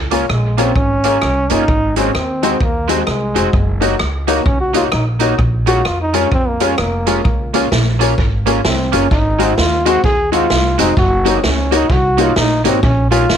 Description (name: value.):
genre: ska.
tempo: 129 BPM.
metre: 4/4.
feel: swing 61% on 8ths.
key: Db major.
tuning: A4 = 440 Hz.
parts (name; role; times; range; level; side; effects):
upright bass; bass; 0.0-13.4 s; F1 to F2; -18 LUFS; equal; none.
electric guitar at the edge of break-up; accompaniment; 0.1-13.2 s; Ab3 to Gb4; -21 LUFS; right 12 dB; analog chorus, tape echo.
dark upright piano; stabs; 0.1-13.2 s; Eb4 to Db5; -20 LUFS; left 12 dB; none.
swinging big-band drum kit; drums; 0.1-13.4 s; hi-hat, kick drum, rim click, snare drum; -18 LUFS; right 1 dB; tape echo.
clear trombone; melody; 0.3-13.4 s; Ab3 to Ab4; -18 LUFS; equal; none.
room: light reverb, studio ambience.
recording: 1960s-style stereo with parts hard left and right.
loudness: -12 LUFS.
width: side -8 dB against mid.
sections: 0.0-13.4 A section.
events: trombone solo 0.0-13.4.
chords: 0.0 Db6; 1.7 Ab7; 3.5 Gb6; 5.4 Bbm7; 7.3 Db6; 9.1 Ab7; 11.0 Gb6; 12.8 Bbm7.